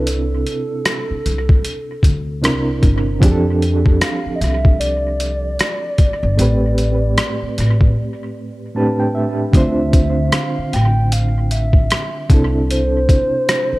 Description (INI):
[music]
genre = lo-fi hip hop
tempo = 76 BPM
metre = 4/4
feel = swing 60% on 16ths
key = unclear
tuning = A4 = 439 Hz
[part]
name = hollow clarinet-like synth lead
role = melody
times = 0.0-13.8 s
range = A4 to G5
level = -23 LUFS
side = right 1 dB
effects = chorus, low-pass filter, analog delay
[part]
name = reed electric piano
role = accompaniment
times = 0.0-13.8 s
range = A2 to A5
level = -20 LUFS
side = right 1 dB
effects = fast tremolo, cassette tape, low-pass filter, analog delay
[part]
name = upright bass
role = bass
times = 0.0-13.8 s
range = G1 to F2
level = -18 LUFS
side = equal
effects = none
[part]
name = boom bap sampler-style drum kit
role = drums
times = 0.1-13.7 s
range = hi-hat, kick drum, rim click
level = -15 LUFS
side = equal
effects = none
[sound]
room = light reverb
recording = echo-heavy mix, cassette tape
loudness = -14 LUFS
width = side -20 dB against mid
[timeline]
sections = 0.0-9.5 A section; 9.5-13.8 B section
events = break 8.0-9.5; reed electric piano fill 8.4-9.5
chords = 0.0 C6; 2.4 C9; 3.2 F69; 6.4 Am9; 8.7 Am11; 9.5 Dm9; 12.3 C6